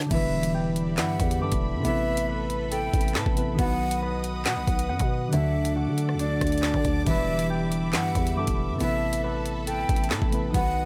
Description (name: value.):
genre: hip hop, drill.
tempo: 138 BPM.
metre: 4/4.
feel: half-time.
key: E minor.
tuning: A4 = 440 Hz.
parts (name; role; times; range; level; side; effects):
concert harp; arpeggios; 0.0-10.9 s; D3 to D6; -32 LUFS; equal; delay.
drill drum kit; drums; 0.0-10.6 s; crash cymbal, handclaps, hi-hat, kick drum, rim click, snare drum; -30 LUFS; equal; none.
breathy mellow silver concert flute; second line; 0.1-10.9 s; D5 to G5; -34 LUFS; equal; delay.
soft electric-piano-like synth keys; accompaniment; 0.1-10.9 s; C3 to B4; -34 LUFS; equal; chorus.
rich symphonic string section; sustained chords; 0.1-10.9 s; G4 to D#6; -40 LUFS; equal; none.
growling 808-style bass; bass; 0.1-10.9 s; E1 to D3; -33 LUFS; equal; none.
room: little or no reverb.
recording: none.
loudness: -26 LUFS.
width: mono.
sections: 0.1-10.9 A section.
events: none.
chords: 0.1 Em7; 1.8 Amadd9; 3.6 B; 5.3 D; 7.1 Em7; 8.8 Amadd9.